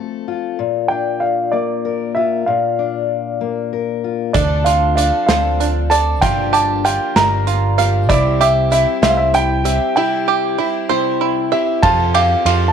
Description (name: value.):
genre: indie folk with a building arrangement.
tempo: 64 BPM (dotted quarters).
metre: 6/8.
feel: straight.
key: F major.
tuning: A4 = 440 Hz.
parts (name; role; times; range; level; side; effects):
fingerpicked steel-string acoustic guitar; accompaniment; 0.0-4.3 s; Bb2 to Bb4; -20 LUFS; left 12 dB; none.
warm upright piano; melody; 0.9-12.7 s; D5 to Bb5; -17 LUFS; right 1 dB; none.
picked plugged-in twelve-string acoustic guitar; accompaniment; 4.3-12.7 s; G2 to A4; -22 LUFS; left 12 dB; none.
bluegrass banjo; arpeggios; 4.3-12.7 s; D4 to F5; -19 LUFS; right 11 dB; none.
picked electric bass; bass; 4.3-12.7 s; G1 to F2; -18 LUFS; right 1 dB; none.
loose indie drum kit; drums; 4.3-12.6 s; hi-hat, kick drum, ride cymbal, snare drum; -21 LUFS; right 1 dB; none.
room: moderate echo chamber reverb, RT60 1.3 s, small room ambience.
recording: 1960s-style stereo with parts hard left and right.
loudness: -14 LUFS.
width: side -7 dB against mid.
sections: 0.0-4.3 A section; 4.3-11.8 B section.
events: break 10.0-11.8.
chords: 0.0 F; 0.6 Bb; 4.3 Dm7; 6.2 Gm7; 8.1 C; 11.8 Fadd9.